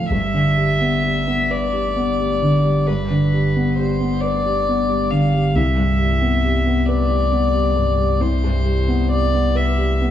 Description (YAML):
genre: neoclassical piano and strings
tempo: 45 BPM (dotted quarters)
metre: 6/8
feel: rubato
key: unclear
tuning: A4 = 440 Hz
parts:
  - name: warm violin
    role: melody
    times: 0.0-10.0 s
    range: B4 to F5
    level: -21 LUFS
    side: left 2 dB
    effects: none
  - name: felt-muted upright piano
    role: accompaniment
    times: 0.0-10.1 s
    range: C2 to B4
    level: -19 LUFS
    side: equal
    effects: none
  - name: punchy sub bass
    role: bass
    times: 0.1-10.1 s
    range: G1 to C2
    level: -22 LUFS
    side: equal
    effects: none
room: moderate plate reverb, RT60 2.7 s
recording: heard from further back in the room, studio reverb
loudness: -16 LUFS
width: side -10 dB against mid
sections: 0.1-10.1 A section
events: none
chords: 0.1 G; 5.5 Cmaj7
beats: | 0.11 1.50 | 2.87 4.21 | 5.55 6.87 | 8.21 9.56